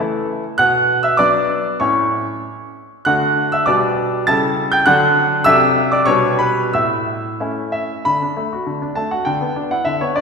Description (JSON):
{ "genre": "classical-period piano sonatina", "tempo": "87-103 BPM", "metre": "2/4", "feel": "rubato", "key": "D major", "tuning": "A4 = 439 Hz", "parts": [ { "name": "bright concert grand piano", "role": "solo", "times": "0.0-10.2 s", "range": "A2 to A6", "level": "-14 LUFS", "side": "equal", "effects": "none" } ], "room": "wet scoring stage reverb, RT60 2.0 s", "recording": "minimal, uncompressed stereo recording", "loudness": "-14 LUFS", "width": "side -5 dB against mid", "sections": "0.0-8.1 A section; 8.1-10.2 B section", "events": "none", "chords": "0.0 A5; 0.6 Bm; 1.8 A; 3.1 D; 3.7 G/B; 4.3 A7/C#; 4.9 D; 5.5 D7/C; 6.1 G/B; 6.7 A; 8.1 D; 9.3 E5/D" }